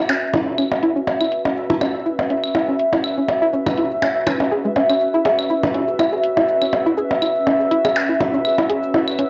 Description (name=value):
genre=minimal techno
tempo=122 BPM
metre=4/4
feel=swing 54% on 16ths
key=C# minor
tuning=A4 = 440 Hz
part: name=string-like resonator pluck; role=riff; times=0.0-9.2 s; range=G#3 to G#4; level=-23 LUFS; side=equal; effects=chorus, cassette tape, analog delay
part: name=pulsing gated texture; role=texture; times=0.0-9.3 s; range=E5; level=-28 LUFS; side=equal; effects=none
part: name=warbly tape-like pad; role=texture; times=0.0-9.3 s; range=C#4 to E5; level=-24 LUFS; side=equal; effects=chorus, built-in reverb, cassette tape
part: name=electronic shaker and hi-hat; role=drums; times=0.1-9.3 s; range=none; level=-41 LUFS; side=equal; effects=low-pass filter on perc, low-pass filter on snare, low-pass filter on hats
part: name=percussion blips and claves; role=percussion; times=0.1-9.2 s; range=none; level=-24 LUFS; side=equal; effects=none
room=wet booth ambience, RT60 0.2 s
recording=home recording on cassette, nothing above 7.7 kHz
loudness=-19 LUFS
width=mono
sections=0.0-9.3 A section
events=filter sweep on synth pluck 0.0-9.3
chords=0.0 C#m